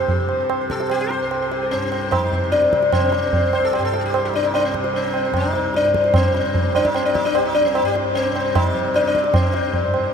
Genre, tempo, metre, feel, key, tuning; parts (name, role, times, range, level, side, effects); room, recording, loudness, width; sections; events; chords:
indian classical, Hindustani; 149 BPM; 4/4; straight; A4 = 440 Hz
sitar; melody; 0.0-10.1 s; C4 to C5; -19 LUFS; left 2 dB; diffuse ambient delay
tanpura; drone; 0.0-10.1 s; C2 to C3; -26 LUFS; left 1 dB
tabla; percussion; 0.1-10.1 s; -22 LUFS; right 2 dB
wet huge ambient reverb, RT60 7.6 s; dreamy mix soaked in reverb; -17 LUFS; side -7 dB against mid
0.0-10.1 A section